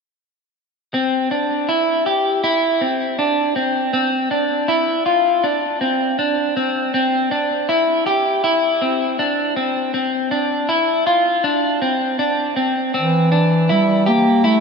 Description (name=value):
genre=dream pop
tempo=80 BPM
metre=4/4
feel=straight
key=C mixolydian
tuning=A4 = 440 Hz
part: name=clean electric guitar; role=arpeggios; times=0.9-14.6 s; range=C4 to G4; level=-16 LUFS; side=equal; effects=wide subtle chorus, ping-pong delay
part: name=mellow bass clarinet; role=melody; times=13.0-14.6 s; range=E3 to Bb3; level=-14 LUFS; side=equal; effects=ping-pong delay
room=wet lush hall reverb, RT60 2.9 s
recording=none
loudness=-16 LUFS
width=side -5 dB against mid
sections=0.9-12.9 A section; 12.9-14.6 B section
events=none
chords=0.9 Cadd9; 3.9 Dm; 6.9 Cadd9; 9.9 Dm; 12.9 Cadd9